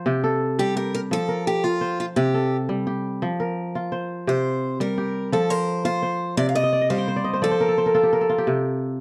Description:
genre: west african traditional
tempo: 114 BPM (dotted quarters)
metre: 12/8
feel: straight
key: C dorian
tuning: A4 = 440 Hz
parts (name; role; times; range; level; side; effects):
- kora; arpeggios; 0.0-9.0 s; C3 to G5; -25 LUFS; equal; none
- picked steel-string acoustic guitar; melody; 0.6-8.3 s; F4 to F5; -26 LUFS; equal; plate reverb
room: moderate studio reverb, RT60 0.5 s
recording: dark, warm production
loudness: -23 LUFS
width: mono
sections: 0.0-9.0 A section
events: kora fill 6.6-8.5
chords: 0.1 C5; 1.1 F; 2.2 C5; 3.2 F5; 4.3 C5; 5.3 F5; 6.4 Cm; 7.4 N.C.; 8.5 C5

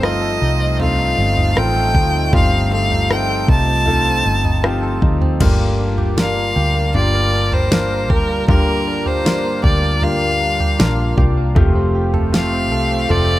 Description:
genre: pop ballad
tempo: 78 BPM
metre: 4/4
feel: straight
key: G minor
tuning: A4 = 439 Hz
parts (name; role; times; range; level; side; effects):
- bright violin; melody; 0.0-13.4 s; Bb4 to A5; -20 LUFS; equal; none
- clear concert grand piano; accompaniment; 0.0-13.4 s; G2 to Bb4; -23 LUFS; left 3 dB; none
- sweeping resonant pad; sustained chords; 0.0-13.4 s; G3 to Bb4; -26 LUFS; equal; chorus
- direct-recorded clean electric guitar; arpeggios; 0.0-13.4 s; G2 to A4; -26 LUFS; right 5 dB; none
- vintage muted fingered electric bass; bass; 0.0-13.4 s; F1 to D2; -19 LUFS; equal; none
- smooth R&B drum kit; drums; 0.0-13.3 s; crash cymbal, kick drum, rim click, snare drum, toms; -18 LUFS; equal; none
room: little or no reverb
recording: none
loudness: -14 LUFS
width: side -15 dB against mid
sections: 0.0-5.4 A section; 5.4-13.4 B section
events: none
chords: 0.0 F7/G; 5.4 Gm7; 11.6 Fadd9

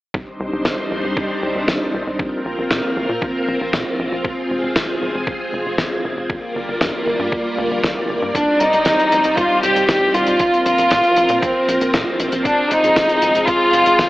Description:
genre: italo disco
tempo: 117 BPM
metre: 4/4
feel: straight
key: unclear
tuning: A4 = 442 Hz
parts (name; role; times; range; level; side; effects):
- string machine, full ensemble; sustained chords; 0.1-14.1 s; G3 to D5; -21 LUFS; equal; ensemble chorus
- tight sequencer bass; bass; 0.1-14.1 s; Eb1 to Bb2; -28 LUFS; equal; digital delay
- electronic kick drum; drums; 0.1-14.1 s; none; -25 LUFS; equal; overdrive, studio reverb
- damped 70s drum kit; drums; 0.7-14.1 s; hi-hat, snare drum; -22 LUFS; equal; studio reverb, gated reverb
- warm chamber violin section; melody; 8.3-14.1 s; C4 to G4; -14 LUFS; equal; digital delay
room: moderate plate reverb, RT60 1.4 s, studio ambience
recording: AM radio sound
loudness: -15 LUFS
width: side -17 dB against mid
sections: 0.1-14.1 A section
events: none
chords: 0.1 Cmadd9; 2.2 Bbsus2; 4.2 Fm; 6.3 Gm7; 8.3 Cmadd9; 10.4 Bbsus2; 12.5 Fm

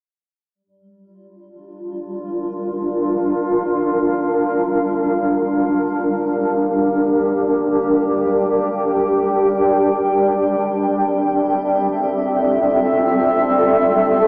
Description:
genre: ambient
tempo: free time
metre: none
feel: none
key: G dorian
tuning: A4 = 440 Hz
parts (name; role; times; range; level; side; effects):
- granular cloud pad; solo; 1.8-14.3 s; G3 to G5; -18 LUFS; equal; built-in reverb, tape echo
room: wet huge ambient reverb, RT60 7.3 s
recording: worn, warbling old tape, cassette tape, warbly pitch drift, small speaker sound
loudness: -18 LUFS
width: mono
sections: 0.5-14.3 A section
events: none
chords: 0.5 Gm7; 10.4 Fmaj9

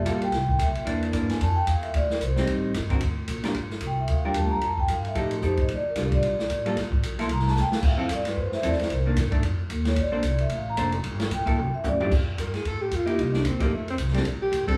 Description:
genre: jazz, small-group swing and bop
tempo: 224 BPM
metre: 4/4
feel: swing 59% on 8ths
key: F major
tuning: A4 = 440 Hz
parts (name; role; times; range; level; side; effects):
- vibraphone with soft mallets; melody; 0.0-12.1 s; G4 to C6; -31 LUFS; equal; none
- hollow-body jazz guitar; accompaniment; 0.0-14.8 s; D3 to C5; -32 LUFS; equal; none
- upright bass; bass; 0.0-14.7 s; F1 to A2; -30 LUFS; equal; none
- open jazz drum kit; drums; 0.1-14.7 s; crash cymbal, hi-hat, kick drum, ride cymbal, snare drum, toms; -31 LUFS; equal; none
- breathy alto saxophone; second line; 12.4-14.8 s; A3 to Bb4; -30 LUFS; equal; none
room: wet large studio reverb, RT60 1.0 s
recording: band playing live in one room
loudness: -25 LUFS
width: mono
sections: 0.0-3.5 A section; 3.5-12.1 A section; 12.1-14.8 A section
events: vibraphone solo 0.0-12.1; drum fill 7.6, 11.6-12.1; alto saxophone solo 12.1-14.8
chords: 0.3 C9; 1.4 F5; 2.5 Am7b5; 3.0 Bb6; 3.5 Gm7; 4.6 F9; 5.7 Bb6; 6.8 Gmadd9; 7.3 Csus2; 7.8 Fmaj7; 8.9 Cm9; 9.4 Dbadd9 (rootless); 10.0 Bbmaj9; 11.0 Gm; 11.6 Csus2; 12.1 Fadd9; 13.2 Cm7; 13.7 Fsus2; 14.3 Bb69

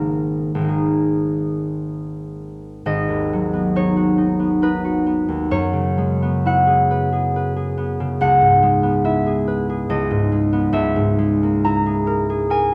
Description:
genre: classical, solo harp piece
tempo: 50-72 BPM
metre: 3/4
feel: rubato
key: G# minor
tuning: A4 = 436 Hz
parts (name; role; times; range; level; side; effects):
- concert harp; solo; 0.0-12.7 s; G#1 to A#5; -19 LUFS; equal; none
room: moderate stone room reverb, RT60 1.2 s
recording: close, detailed microphones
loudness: -19 LUFS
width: mono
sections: 0.0-2.9 A section; 2.9-12.7 B section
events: none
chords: 0.0 G#madd9; 2.9 G#m7; 5.5 F#9sus4; 8.2 C#m7; 9.9 G#m/C#; 10.7 C#m6

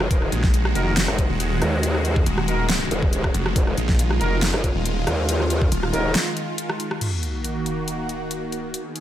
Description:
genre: heavy wobble dubstep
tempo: 139 BPM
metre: 4/4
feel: half-time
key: Eb minor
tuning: A4 = 443 Hz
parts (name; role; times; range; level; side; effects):
- supersaw pad; sustained chords; 0.0-9.0 s; Eb3 to Ab4; -26 LUFS; equal; phaser, sidechain pumping
- growl bass; bass; 0.0-6.2 s; Eb1 to Eb2; -22 LUFS; equal; chorus, overdrive
- dubstep drum kit; drums; 0.0-9.0 s; crash cymbal, hi-hat, rim click, snare drum; -26 LUFS; equal; overdrive, studio reverb
- electronic kick drum; drums; 0.1-5.7 s; none; -21 LUFS; equal; overdrive, studio reverb
- snarling distorted saw bass; bass; 0.3-5.9 s; Eb1 to Bb1; -23 LUFS; equal; distortion, overdrive
- dark brass ensemble; stabs; 0.8-6.1 s; Eb4 to Bb4; -29 LUFS; right 2 dB; digital delay
- sub drop; sound effects; 7.0-8.7 s; none; -30 LUFS; equal; none
room: little or no reverb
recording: none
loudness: -20 LUFS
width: side -12 dB against mid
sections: 0.0-7.0 A section; 7.0-9.0 B section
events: drop 0.0-7.0; break 6.2-7.0; band accent 6.9; impact 7.0-8.7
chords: 0.0 Ebm

